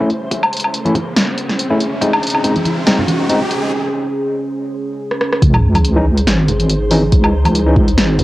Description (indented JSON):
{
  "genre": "deep dubstep",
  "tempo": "141 BPM",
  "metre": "4/4",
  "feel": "swing 54% on 16ths, half-time",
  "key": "unclear",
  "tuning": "A4 = 440 Hz",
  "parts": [
    { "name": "deep dark ambient pad", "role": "sustained chords", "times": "0.0-8.2 s", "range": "C#4 to G#4", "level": "-22 LUFS", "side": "right 1 dB", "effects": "chorus, built-in reverb, cassette tape" },
    { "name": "overdriven tine electric piano", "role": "stabs", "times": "0.0-3.4, 6.0-7.7 s", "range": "E3 to E4", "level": "-19 LUFS", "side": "left 1 dB", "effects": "fast tremolo, vintage 12-bit sampler grit, low-pass filter, cassette tape, dub echo" },
    { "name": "riser and sub drop", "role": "sound effects", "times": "0.0-7.1 s", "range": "none", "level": "-22 LUFS", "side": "equal", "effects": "none" },
    { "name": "flickering grainy texture", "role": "texture", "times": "0.0-8.2 s", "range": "B#4", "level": "-33 LUFS", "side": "equal", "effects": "built-in reverb, cassette tape" },
    { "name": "deep house drum kit", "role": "drums", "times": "0.1-8.2 s", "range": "hi-hat, rim click, snare drum, woodblock", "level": "-17 LUFS", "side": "equal", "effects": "overdrive, cassette tape" },
    { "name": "electronic kick drum", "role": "drums", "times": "0.3-2.1, 5.4-7.9 s", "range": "none", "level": "-14 LUFS", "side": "equal", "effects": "overdrive, high-pass filter on kick, cassette tape, high-pass filter on room" },
    { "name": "congas", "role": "percussion", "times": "0.9-8.2 s", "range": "none", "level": "-22 LUFS", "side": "right 1 dB", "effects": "none" },
    { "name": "deep soft wobble bass", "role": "bass", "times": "5.4-8.2 s", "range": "G#1 to C#2", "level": "-14 LUFS", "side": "equal", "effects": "chorus" }
  ],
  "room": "moderate spring reverb, RT60 2.1 s",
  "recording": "home recording on cassette",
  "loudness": "-13 LUFS",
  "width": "side -17 dB against mid",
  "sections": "0.0-5.4 A section; 5.4-8.2 B section",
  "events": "build-up 0.0-5.4; riser 0.0-3.7; filter sweep on tine electric piano 0.0-5.4; filter sweep on ambient pad 0.0-5.4; break 3.7-5.4; drum fill 5.1-5.4; drop 5.4-8.2; impact 5.4-7.1",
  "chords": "0.0 A; 2.0 G#; 5.4 C#sus2"
}